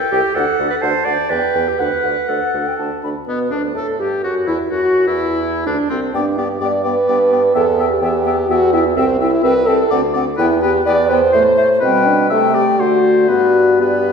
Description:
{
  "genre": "quick classical-period movement for wind quintet",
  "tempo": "126 BPM",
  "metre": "3/4",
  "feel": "straight",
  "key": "G major",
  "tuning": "A4 = 440 Hz",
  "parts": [
    { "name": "clear oboe", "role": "second line", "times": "0.0-14.1 s", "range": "B3 to A5", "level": "-23 LUFS", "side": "left 5 dB", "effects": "none" },
    { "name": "mellow hollow silver concert flute", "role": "melody", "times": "0.1-14.1 s", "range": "C4 to B5", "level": "-23 LUFS", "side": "left 6 dB", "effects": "none" },
    { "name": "clear clarinet", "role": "accompaniment", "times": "0.1-14.1 s", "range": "G3 to D5", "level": "-22 LUFS", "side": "right 6 dB", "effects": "none" },
    { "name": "mellow French horn", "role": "accompaniment", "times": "0.1-14.1 s", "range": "B3 to D5", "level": "-16 LUFS", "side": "equal", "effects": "none" },
    { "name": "mellow bassoon", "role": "bass", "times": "0.1-14.1 s", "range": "C2 to D3", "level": "-21 LUFS", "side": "right 3 dB", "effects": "none" }
  ],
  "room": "wet scoring stage reverb, RT60 1.5 s",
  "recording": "recorded in a church or concert hall",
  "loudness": "-13 LUFS",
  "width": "side -6 dB against mid",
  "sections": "0.0-3.3 A section; 3.3-14.1 B section",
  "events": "none",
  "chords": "0.4 D; 1.3 Em; 1.8 D; 3.3 G; 4.7 D7; 6.1 G; 7.6 Em; 9.0 C; 9.9 D7(no3); 10.4 Em; 11.3 Am; 11.8 G/B; 12.3 Am7/C; 12.8 D7; 13.3 G"
}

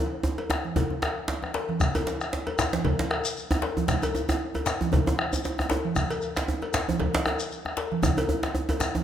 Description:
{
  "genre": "west african traditional, West African drum ensemble",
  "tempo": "116 BPM",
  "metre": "4/4",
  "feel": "swing 55% on 16ths",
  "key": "none",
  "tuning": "none",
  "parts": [
    { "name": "djembe", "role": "percussion", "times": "0.1-8.9 s", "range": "none", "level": "-34 LUFS", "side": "left 4 dB", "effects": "none" },
    { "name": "djembe", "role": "percussion", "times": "0.2-9.0 s", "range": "none", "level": "-28 LUFS", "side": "right 2 dB", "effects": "none" },
    { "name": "cowbell", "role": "percussion", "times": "0.4-8.8 s", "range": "none", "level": "-34 LUFS", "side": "left 4 dB", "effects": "none" },
    { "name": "bombo", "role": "percussion", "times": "0.5-9.0 s", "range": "none", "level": "-30 LUFS", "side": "left 1 dB", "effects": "none" },
    { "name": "congas", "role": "percussion", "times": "0.6-9.0 s", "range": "none", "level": "-32 LUFS", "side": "right 5 dB", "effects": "none" },
    { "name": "shekere", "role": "percussion", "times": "1.8-8.9 s", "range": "none", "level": "-35 LUFS", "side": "left 4 dB", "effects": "none" }
  ],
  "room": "moderate recital hall reverb, RT60 1.6 s",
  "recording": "none",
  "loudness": "-24 LUFS",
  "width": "side -10 dB against mid",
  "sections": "0.0-1.8 A section; 1.8-9.0 B section",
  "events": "drum fill 0.0-1.8",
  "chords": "none"
}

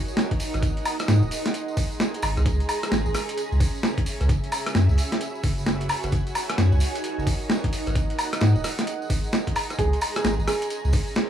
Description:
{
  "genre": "UK garage, two-step garage",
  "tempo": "131 BPM",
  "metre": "4/4",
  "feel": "swing 63% on 16ths",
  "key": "C# dorian",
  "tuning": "A4 = 442 Hz",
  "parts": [
    { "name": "granular cloud pad", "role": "texture", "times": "0.0-11.3 s", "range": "C#4 to B#5", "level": "-30 LUFS", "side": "right 2 dB", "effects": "built-in reverb, sidechain pumping" },
    { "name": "tambourine", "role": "percussion", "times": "0.1-11.3 s", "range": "none", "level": "-38 LUFS", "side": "right 2 dB", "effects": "none" },
    { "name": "boom bap sampler-style drum kit", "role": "drums", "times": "0.2-11.3 s", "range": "hi-hat, rim click, snare drum, woodblock", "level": "-26 LUFS", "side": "equal", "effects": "overdrive" },
    { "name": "electronic kick drum", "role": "drums", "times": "0.3-11.0 s", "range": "none", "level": "-25 LUFS", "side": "equal", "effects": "overdrive" },
    { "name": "saturated sub bass", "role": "bass", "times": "0.5-10.9 s", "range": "D#1 to G#2", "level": "-22 LUFS", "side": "equal", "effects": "sidechain pumping" },
    { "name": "nylon-string guitar", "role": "melody", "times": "9.8-10.7 s", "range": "G#4", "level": "-28 LUFS", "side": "right 3 dB", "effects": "tape echo" }
  ],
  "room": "light reverb",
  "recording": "dry, gritty hardware recording",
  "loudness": "-21 LUFS",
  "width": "side -10 dB against mid",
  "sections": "0.0-11.3 A section",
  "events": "none",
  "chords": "0.4 G#9; 2.5 C#m; 4.3 F#7sus4; 7.7 G#9; 9.8 C#m"
}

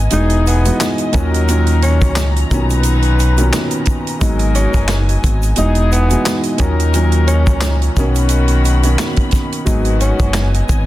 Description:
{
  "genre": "hip hop, boom-bap hip-hop",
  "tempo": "88 BPM",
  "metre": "4/4",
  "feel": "swing 54% on 16ths",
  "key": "G# minor",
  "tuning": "A4 = 444 Hz",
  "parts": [
    { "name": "dark grand piano", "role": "accompaniment", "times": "0.0-10.9 s", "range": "A#2 to D#4", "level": "-20 LUFS", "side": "right 1 dB", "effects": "high-pass filter, low-pass filter" },
    { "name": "muted studio string section", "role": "sustained chords", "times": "0.0-10.9 s", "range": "E3 to B5", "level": "-28 LUFS", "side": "left 2 dB", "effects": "high-pass filter, low-pass filter" },
    { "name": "deep dub fingered electric bass", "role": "bass", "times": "0.0-10.9 s", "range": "E1 to D#2", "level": "-14 LUFS", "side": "equal", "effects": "none" },
    { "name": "growling tenor saxophone", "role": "melody", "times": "0.1-10.5 s", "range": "B3 to D#4", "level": "-24 LUFS", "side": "left 1 dB", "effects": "high-pass filter, low-pass filter, tape echo" },
    { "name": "warm horn section", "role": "stabs", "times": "0.1-10.7 s", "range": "D#3 to B4", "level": "-24 LUFS", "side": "left 4 dB", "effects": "high-pass filter, low-pass filter, tape echo" },
    { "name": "warm soul drum kit", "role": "drums", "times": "0.1-10.9 s", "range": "handclaps, hi-hat, kick drum, snare drum", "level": "-18 LUFS", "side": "equal", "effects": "none" },
    { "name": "tube shaker", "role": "percussion", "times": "0.1-10.9 s", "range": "none", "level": "-33 LUFS", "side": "left 7 dB", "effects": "none" }
  ],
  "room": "small room ambience",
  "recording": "dense, heavily limited modern master",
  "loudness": "-12 LUFS",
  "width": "side -15 dB against mid",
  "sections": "0.0-10.9 A section",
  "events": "none",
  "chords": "0.1 Emaj7; 1.1 D#m7; 2.5 Bmaj9; 4.2 G#m7; 5.6 Emaj7; 6.6 D#m7; 8.0 Bmaj9; 9.7 G#m7"
}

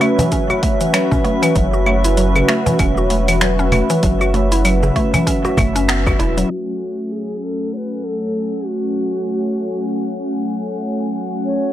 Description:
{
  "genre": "organic downtempo",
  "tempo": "97 BPM",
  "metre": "4/4",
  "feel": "swing 58% on 16ths",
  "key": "F# minor",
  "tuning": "A4 = 440 Hz",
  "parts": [
    { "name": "warm analog pad", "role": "sustained chords", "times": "0.0-11.7 s", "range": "F#3 to G#5", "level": "-20 LUFS", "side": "equal", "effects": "wide subtle chorus, sidechain pumping" },
    { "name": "mallet-like synth pluck", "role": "arpeggios", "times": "0.0-6.5 s", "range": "C#3 to F#4", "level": "-19 LUFS", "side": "equal", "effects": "chorus, analog delay" },
    { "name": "deep house drum kit", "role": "drums", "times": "0.0-6.5 s", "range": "claves, finger snaps, hi-hat, shaker", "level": "-20 LUFS", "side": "equal", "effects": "overdrive" },
    { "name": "drifting glass-harmonics texture", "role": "texture", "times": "0.0-11.7 s", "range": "E5 to F#5", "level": "-27 LUFS", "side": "right 1 dB", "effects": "chorus, built-in reverb" },
    { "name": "cajon", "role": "percussion", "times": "0.2-6.3 s", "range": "none", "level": "-22 LUFS", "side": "right 1 dB", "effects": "none" },
    { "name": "electronic kick drum", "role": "drums", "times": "0.3-6.2 s", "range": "none", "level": "-20 LUFS", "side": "equal", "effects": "overdrive" },
    { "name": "round analog bass", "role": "bass", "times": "1.6-6.4 s", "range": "E1 to F#1", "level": "-18 LUFS", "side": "equal", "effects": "transformer saturation, sidechain pumping" },
    { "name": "breathy ney", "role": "melody", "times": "6.5-11.7 s", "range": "F#4 to C#5", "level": "-24 LUFS", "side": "equal", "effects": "analog delay" }
  ],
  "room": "little or no reverb",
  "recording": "dry, gritty hardware recording, transformer saturation, low-pass filter",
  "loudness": "-15 LUFS",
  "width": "side -12 dB against mid",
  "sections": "0.0-6.5 A section; 6.5-11.7 B section",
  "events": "band accent 5.9-6.2; filter sweep 6.5-11.7",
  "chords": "0.0 F#m7; 6.5 F#m"
}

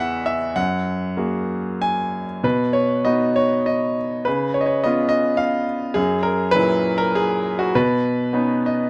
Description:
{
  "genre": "classical, lyrical solo piano",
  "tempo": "89-106 BPM",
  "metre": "3/4",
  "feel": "rubato",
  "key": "B major",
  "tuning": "A4 = 440 Hz",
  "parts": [
    { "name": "bright grand piano", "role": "solo", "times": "0.0-8.9 s", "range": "E2 to G#5", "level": "-21 LUFS", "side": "equal", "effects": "none" }
  ],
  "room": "moderate studio reverb, RT60 0.6 s",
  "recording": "none",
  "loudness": "-21 LUFS",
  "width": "mono",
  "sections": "0.0-8.9 A section",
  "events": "grand piano fill 8.3-8.9",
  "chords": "0.0 E; 0.6 F#add9; 2.4 B; 4.3 C#7; 6.0 F#7; 7.8 Badd9"
}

